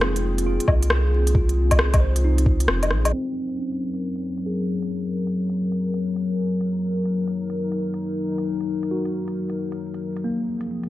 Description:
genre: future garage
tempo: 135 BPM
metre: 4/4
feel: swing 65% on 16ths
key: unclear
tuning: A4 = 441 Hz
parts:
  - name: mellow tine electric piano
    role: accompaniment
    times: 0.0-10.9 s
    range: Bb3 to C5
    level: -30 LUFS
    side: right 1 dB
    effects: medium stereo tremolo, sidechain pumping, tape echo
  - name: dark analog pad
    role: sustained chords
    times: 0.0-10.9 s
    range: F3 to Bb4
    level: -25 LUFS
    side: left 2 dB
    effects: chorus, sidechain pumping
  - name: soft dub sub bass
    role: bass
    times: 0.0-3.1 s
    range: F1 to C2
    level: -21 LUFS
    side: equal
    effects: sidechain pumping
  - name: organic electronic drum kit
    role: drums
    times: 0.0-10.9 s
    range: hi-hat, rim click, woodblock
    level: -24 LUFS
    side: left 1 dB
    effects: overdrive, small room reverb
  - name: electronic kick drum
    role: drums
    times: 0.7-2.6 s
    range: none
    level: -20 LUFS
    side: equal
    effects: overdrive, small room reverb
room: moderate lush hall reverb, RT60 1.7 s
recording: vinyl crackle, low-pass filter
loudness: -21 LUFS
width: side -15 dB against mid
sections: 0.0-3.1 A section; 3.1-10.9 B section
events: filter sweep 3.1-10.9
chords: 0.0 Fm; 3.1 Gb; 10.2 Fm

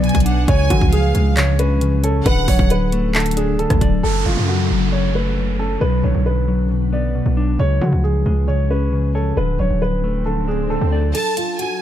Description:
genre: hip hop, trap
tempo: 135 BPM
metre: 4/4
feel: half-time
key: F# harmonic minor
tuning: A4 = 440 Hz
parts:
  - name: dark baby grand piano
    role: melody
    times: 0.0-11.8 s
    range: E#4 to D5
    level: -23 LUFS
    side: right 1 dB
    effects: low-pass filter, digital delay
  - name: clear studio violin section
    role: second line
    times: 0.0-2.7, 11.2-11.8 s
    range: E#5 to A5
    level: -25 LUFS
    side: right 2 dB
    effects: digital delay
  - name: mellow electric guitar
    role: accompaniment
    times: 0.0-11.1 s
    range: F#2 to D5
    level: -22 LUFS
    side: left 2 dB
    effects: low-pass filter
  - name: ethereal airy pad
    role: sustained chords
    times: 0.0-11.8 s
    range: E#3 to B4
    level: -26 LUFS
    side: left 2 dB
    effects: ensemble chorus, built-in reverb, phaser
  - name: hard-hitting 808-style bass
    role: bass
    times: 0.0-11.1 s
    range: D1 to C#3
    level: -19 LUFS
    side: equal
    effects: none
  - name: trap drum kit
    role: drums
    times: 0.0-3.9, 11.1-11.7 s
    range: crash cymbal, handclaps, hi-hat, kick drum, rim click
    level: -19 LUFS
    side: equal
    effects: none
  - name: downlifter and swell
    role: sound effects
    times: 4.0-11.1 s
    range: none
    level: -29 LUFS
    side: right 2 dB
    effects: none
room: digital ambience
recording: none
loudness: -15 LUFS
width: side -11 dB against mid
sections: 0.0-4.0 A section; 4.0-11.1 B section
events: swell 9.7-11.1; break 11.1-11.8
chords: 0.5 C#; 2.3 D; 4.0 F#m; 5.8 Bm; 7.6 C#; 9.4 D; 11.1 F#m

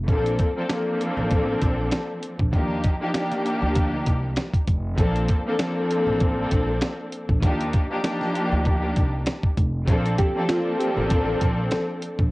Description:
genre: hip hop, boom-bap hip-hop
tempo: 98 BPM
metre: 4/4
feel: swing 56% on 16ths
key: Bb major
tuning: A4 = 440 Hz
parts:
  - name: upright bass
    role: bass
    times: 0.0-12.3 s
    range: F1 to Eb2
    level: -26 LUFS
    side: equal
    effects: none
  - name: clear studio string section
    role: accompaniment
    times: 0.1-12.2 s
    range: F3 to A4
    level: -24 LUFS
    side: left 1 dB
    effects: cassette tape, high-pass filter, low-pass filter
  - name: dusty soul sampler-style drum kit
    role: drums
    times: 0.1-12.3 s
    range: hi-hat, kick drum, snare drum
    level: -22 LUFS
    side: equal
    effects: cassette tape
  - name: mellow electric guitar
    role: melody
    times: 10.2-11.8 s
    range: F4 to A4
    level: -27 LUFS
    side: right 1 dB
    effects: ensemble chorus, high-pass filter, low-pass filter, analog delay
room: little or no reverb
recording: home recording on cassette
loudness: -21 LUFS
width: side -21 dB against mid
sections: 0.0-5.0 A section; 5.0-12.3 B section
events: none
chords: 0.1 Bbmaj9; 2.5 Ebmaj9; 5.0 Bbmaj9; 7.4 Ebmaj9; 9.9 Bbmaj9

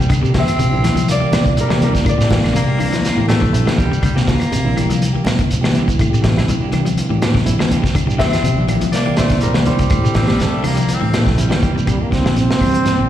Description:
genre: afrobeat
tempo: 122 BPM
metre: 4/4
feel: swing 53% on 16ths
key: C mixolydian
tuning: A4 = 440 Hz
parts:
  - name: concert harp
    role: melody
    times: 0.0-3.9, 8.2-11.6 s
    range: Bb4 to E5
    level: -23 LUFS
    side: left 2 dB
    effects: slapback echo
  - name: clear baritone saxophone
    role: second line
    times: 0.0-5.2, 10.2-11.9 s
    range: G3 to C4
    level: -25 LUFS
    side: left 4 dB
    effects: slapback echo
  - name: electric guitar at the edge of break-up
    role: arpeggios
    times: 0.0-13.1 s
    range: C3 to F3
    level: -22 LUFS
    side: left 6 dB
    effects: none
  - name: fingered electric bass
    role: bass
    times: 0.0-13.1 s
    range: Bb1 to C3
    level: -19 LUFS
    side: equal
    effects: none
  - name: shekere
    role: percussion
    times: 0.0-13.0 s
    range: none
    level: -25 LUFS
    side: right 2 dB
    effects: none
  - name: crunchy breakbeat drum kit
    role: drums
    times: 0.1-13.0 s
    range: hi-hat, kick drum, snare drum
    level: -18 LUFS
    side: equal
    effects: none
  - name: claves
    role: percussion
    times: 0.1-12.7 s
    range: none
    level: -34 LUFS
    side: left 4 dB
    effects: none
  - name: reed electric piano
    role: accompaniment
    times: 0.2-12.5 s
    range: D3 to G4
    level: -24 LUFS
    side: right 2 dB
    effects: slapback echo
  - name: clean electric guitar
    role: stabs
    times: 0.2-13.1 s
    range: E3 to G4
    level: -25 LUFS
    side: right 7 dB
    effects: harmonic tremolo, slapback echo
  - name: congas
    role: percussion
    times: 0.3-11.8 s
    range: none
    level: -25 LUFS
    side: right 1 dB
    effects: none
  - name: growling tenor saxophone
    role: second line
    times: 0.4-3.5, 8.2-11.3 s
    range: G3 to C4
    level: -26 LUFS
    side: right 4 dB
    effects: slapback echo
  - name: clear trombone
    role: melody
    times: 11.9-13.1 s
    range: G3 to C4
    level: -18 LUFS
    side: right 2 dB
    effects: slapback echo
room: little or no reverb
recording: live gig heard through the venue's PA, recital hall reverb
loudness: -13 LUFS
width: side -11 dB against mid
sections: 0.0-11.9 A section; 11.9-13.1 B section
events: trombone solo 11.9-13.1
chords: 0.0 C9

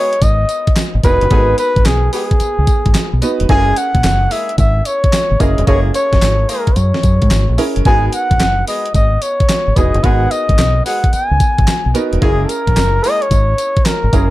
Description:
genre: R&B, new jack swing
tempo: 110 BPM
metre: 4/4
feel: swing 67% on 16ths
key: G# minor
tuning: A4 = 441 Hz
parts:
  - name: trumpet with bucket mute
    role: melody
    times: 0.0-14.3 s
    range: G#4 to G#5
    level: -17 LUFS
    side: equal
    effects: none
  - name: warm concert grand piano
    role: accompaniment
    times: 0.0-14.3 s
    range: B3 to B4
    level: -23 LUFS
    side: right 3 dB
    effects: none
  - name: warm horn section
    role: stabs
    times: 0.0-14.3 s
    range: G#3 to G#4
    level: -26 LUFS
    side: left 2 dB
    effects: none
  - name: crisp 8-bit digital drum machine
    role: drums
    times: 0.1-14.3 s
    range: handclaps, hi-hat, kick drum, snare drum, tambourine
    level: -15 LUFS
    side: equal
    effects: none
  - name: deep dub fingered electric bass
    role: bass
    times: 0.2-14.3 s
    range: E1 to G#2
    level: -15 LUFS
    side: equal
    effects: none
room: little or no reverb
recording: dark, warm production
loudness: -11 LUFS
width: side -16 dB against mid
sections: 0.0-14.3 A section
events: none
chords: 0.0 G#m7; 3.5 F#9; 7.9 G#m7; 12.2 F#9

